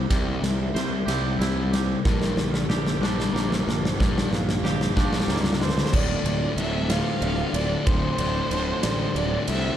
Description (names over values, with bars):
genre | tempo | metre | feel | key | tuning
post-rock | 62 BPM (dotted quarters) | 6/8 | straight | D minor | A4 = 440 Hz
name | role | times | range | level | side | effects
granular cloud pad | sustained chords | 0.0-9.8 s | C3 to D5 | -37 LUFS | right 4 dB | none
twangy electric guitar | arpeggios | 0.0-5.9 s | G2 to C5 | -33 LUFS | right 4 dB | tape echo
vibraphone with medium mallets | arpeggios | 0.0-9.8 s | Bb4 to F5 | -37 LUFS | right 5 dB | tape echo
sludgy distorted guitar | riff | 0.0-9.8 s | D2 to C4 | -27 LUFS | left 4 dB | overdrive
fuzz fingered electric bass | bass | 0.0-9.7 s | D1 to C#2 | -28 LUFS | right 1 dB | overdrive
huge arena drum kit | drums | 0.1-9.6 s | crash cymbal, kick drum, ride cymbal, snare drum | -26 LUFS | equal | none
clear violin | melody | 5.6-9.8 s | C5 to F5 | -29 LUFS | right 4 dB | tape echo
room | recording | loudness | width
light reverb, small room ambience | dark, warm production | -21 LUFS | side -10 dB against mid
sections
0.0-5.9 A section; 5.9-9.8 B section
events
build-up 0.0-5.9; drum fill 0.0-5.9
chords
0.0 C7; 2.1 Gm7/Bb; 5.9 Dm7